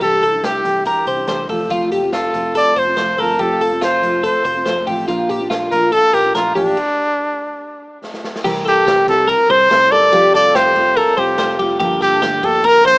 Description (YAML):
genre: jangly indie pop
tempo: 142 BPM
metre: 4/4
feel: straight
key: C mixolydian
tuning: A4 = 441 Hz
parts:
  - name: clear trumpet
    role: melody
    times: 0.0-13.0 s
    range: D4 to D5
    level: -14 LUFS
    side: equal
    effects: none
  - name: fingerpicked steel-string acoustic guitar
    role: accompaniment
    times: 0.0-13.0 s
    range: G2 to Bb4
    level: -24 LUFS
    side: right 2 dB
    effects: none
  - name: twelve-string electric guitar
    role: arpeggios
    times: 0.0-13.0 s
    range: F4 to C5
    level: -18 LUFS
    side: left 1 dB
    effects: wide subtle chorus
  - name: vintage muted picked electric bass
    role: bass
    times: 0.0-13.0 s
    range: F1 to C2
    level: -35 LUFS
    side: equal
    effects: none
  - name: raw garage drum kit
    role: drums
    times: 0.0-12.9 s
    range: crash cymbal, hi-hat, kick drum, ride cymbal, snare drum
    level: -27 LUFS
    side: equal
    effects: none
room: light reverb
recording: rough home demo mix, small speaker sound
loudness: -12 LUFS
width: side -25 dB against mid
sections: 0.0-8.5 A section; 8.5-13.0 B section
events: stop 6.8-8.5; drum fill 8.0-8.5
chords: 0.0 Cadd9; 1.5 F; 5.1 Bb; 8.5 C7; 10.1 Fadd9; 11.8 Gm7